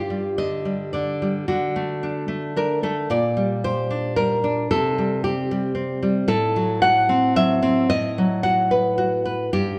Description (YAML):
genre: romantic piece for solo classical guitar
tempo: 111 BPM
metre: 3/4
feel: rubato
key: G minor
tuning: A4 = 441 Hz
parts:
  - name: nylon-string guitar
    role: solo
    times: 0.0-9.8 s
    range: G2 to F#5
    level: -22 LUFS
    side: equal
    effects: none
room: wet recital hall reverb, RT60 1.7 s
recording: recorded in a church or concert hall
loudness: -22 LUFS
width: mono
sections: 0.0-9.8 A section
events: none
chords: 0.0 G5; 1.5 D; 3.1 Gm/Bb; 4.7 C5; 6.3 F#dim/A; 7.9 B7/A